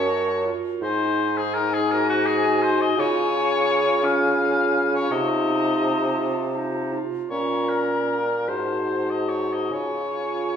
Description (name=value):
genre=classical, slow romantic movement for wind quintet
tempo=48-57 BPM (dotted quarters)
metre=6/8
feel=rubato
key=Db major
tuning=A4 = 445 Hz
part: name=hollow concert flute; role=melody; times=0.0-10.6 s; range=Ab5 to Bb5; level=-31 LUFS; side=left 5 dB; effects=none
part: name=warm oboe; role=second line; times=0.0-10.6 s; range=Gb4 to F5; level=-24 LUFS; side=left 4 dB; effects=none
part: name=clear clarinet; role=accompaniment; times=0.0-10.6 s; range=Db4 to Gb4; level=-29 LUFS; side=right 4 dB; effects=none
part: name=mellow French horn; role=accompaniment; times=0.0-10.6 s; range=Db4 to Gb4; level=-28 LUFS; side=left 1 dB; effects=none
part: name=warm bassoon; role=bass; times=0.0-10.6 s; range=Gb2 to Db3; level=-25 LUFS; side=right 2 dB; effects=none
room=wet recital hall reverb, RT60 1.4 s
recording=heard from further back in the room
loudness=-20 LUFS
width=side -8 dB against mid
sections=0.0-10.6 A section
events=none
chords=0.0 Gbm; 0.8 Ab5; 3.0 Db; 5.1 F7/C; 7.3 Bbm; 8.5 Ab7b9; 9.7 Db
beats=| 0.81 1.90 | 2.97 4.03 | 5.10 6.19 | 7.30 8.47 | 9.70